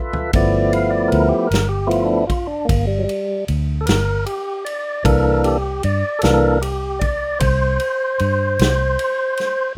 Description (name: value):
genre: slow blues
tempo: 51 BPM (dotted quarters)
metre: 12/8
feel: straight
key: unclear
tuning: A4 = 442 Hz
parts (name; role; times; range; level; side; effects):
- tonewheel organ; sustained chords; 0.0-9.7 s; E3 to F5; -21 LUFS; equal; slow rotary speaker
- natural country drum kit; drums; 0.1-9.6 s; kick drum, ride cymbal, snare drum, toms; -25 LUFS; equal; none
- vintage muted fingered electric bass; bass; 0.3-9.0 s; G1 to G2; -23 LUFS; equal; none
room: light reverb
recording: rough home demo mix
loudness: -18 LUFS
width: mono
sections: 0.3-9.8 A section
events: drum fill 0.0-0.3; tonewheel organ solo 0.3-9.8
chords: 0.3 G13; 5.1 C13